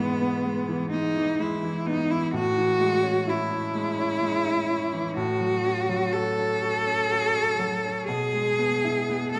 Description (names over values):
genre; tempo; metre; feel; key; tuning
classical, romantic duo for cello and grand piano; 63 BPM; 3/4; rubato; E major; A4 = 440 Hz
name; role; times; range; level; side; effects
clear cello; melody; 0.0-9.4 s; B3 to A4; -27 LUFS; equal; none
bright baby grand piano; accompaniment; 0.0-9.4 s; G#2 to F#4; -31 LUFS; equal; none
room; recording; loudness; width
wet recital hall reverb, RT60 1.7 s; dark, warm production; -25 LUFS; mono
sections
0.0-9.4 A section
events
none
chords
0.0 E/G#; 2.3 Amaj7; 5.1 F#m/A; 8.1 E/B